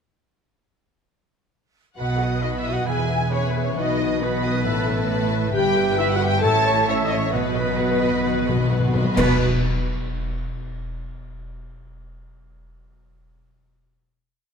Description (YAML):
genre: cinematic, heroic adventure film score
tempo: 134 BPM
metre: 4/4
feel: straight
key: B mixolydian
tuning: A4 = 440 Hz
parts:
  - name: warm symphonic violin section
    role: melody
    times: 2.0-9.4 s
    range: B4 to A5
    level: -28 LUFS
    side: left 2 dB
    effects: none
  - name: clear oboe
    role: second line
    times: 2.0-9.4 s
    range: B4 to A5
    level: -32 LUFS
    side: right 2 dB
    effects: none
  - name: small flute group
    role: second line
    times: 2.0-9.4 s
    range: B4 to A5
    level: -30 LUFS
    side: right 2 dB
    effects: none
  - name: warm clarinet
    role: second line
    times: 2.0-8.9 s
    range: B4 to E5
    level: -32 LUFS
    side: left 2 dB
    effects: none
  - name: warm symphonic violin section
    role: second line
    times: 2.0-9.4 s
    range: B4 to D#6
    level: -33 LUFS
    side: left 1 dB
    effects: none
  - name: warm symphonic viola section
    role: accompaniment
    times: 2.0-9.4 s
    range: F#4 to E5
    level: -29 LUFS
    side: equal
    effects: none
  - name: mellow French horn section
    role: sustained chords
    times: 2.0-9.3 s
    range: B3 to A4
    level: -27 LUFS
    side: left 3 dB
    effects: none
  - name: concert harp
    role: arpeggios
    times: 2.0-11.0 s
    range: G2 to B5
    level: -30 LUFS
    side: left 9 dB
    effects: none
  - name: rich symphonic cello section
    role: bass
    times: 2.0-9.4 s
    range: E2 to B2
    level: -28 LUFS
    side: right 4 dB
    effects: none
  - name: warm symphonic double bass section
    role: bass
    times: 2.0-9.4 s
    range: E1 to B1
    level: -27 LUFS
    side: right 5 dB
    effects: none
  - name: cymbal swell, clash cymbals and concert bass drum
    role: percussion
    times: 5.6-10.0 s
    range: none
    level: -30 LUFS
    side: equal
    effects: none
  - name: timpani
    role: percussion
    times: 7.3-9.4 s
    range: B2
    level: -25 LUFS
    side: left 1 dB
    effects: none
room: wet concert hall reverb, RT60 2.3 s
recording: none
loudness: -19 LUFS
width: side -6 dB against mid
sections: 2.0-9.2 theme; 9.2-11.0 final chord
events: timpani fill 7.3-9.2; band accent 9.2-9.6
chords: 2.0 B; 2.9 E; 3.8 B; 4.7 Asus2; 5.6 Em/G; 6.4 A; 7.3 B